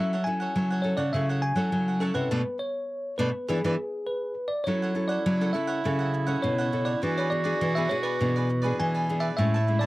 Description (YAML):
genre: samba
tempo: 102 BPM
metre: 4/4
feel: straight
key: F# minor from 4.7 s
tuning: A4 = 440 Hz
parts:
  - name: bell-like tine electric piano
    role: melody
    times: 0.0-9.9 s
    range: G#4 to G#5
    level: -30 LUFS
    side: equal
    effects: none
  - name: cavaquinho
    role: accompaniment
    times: 0.0-9.9 s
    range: E4 to A5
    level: -35 LUFS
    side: right 4 dB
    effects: none
  - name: nylon-string guitar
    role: accompaniment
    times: 0.0-9.9 s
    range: A2 to A4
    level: -33 LUFS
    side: left 3 dB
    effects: none
  - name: nylon-string guitar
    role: bass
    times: 0.0-9.9 s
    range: A2 to F#3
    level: -27 LUFS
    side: equal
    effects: none
  - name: clear clarinet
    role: second line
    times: 4.7-9.9 s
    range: E4 to F#4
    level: -32 LUFS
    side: right 4 dB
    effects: none
room: light reverb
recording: dry, close 1970s-style studio recording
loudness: -24 LUFS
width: side -18 dB against mid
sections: 0.0-4.7 A section; 4.7-9.9 B section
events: band accent 2.3-4.7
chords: 0.0 F#m7; 2.3 Bm7; 3.5 E7; 4.7 F#m7; 7.0 E7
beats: 0.56 1.15 1.73 | 2.32 2.91 3.50 4.09 | 4.67 5.26 5.85 6.44 | 7.03 7.62 8.21 8.80 | 9.39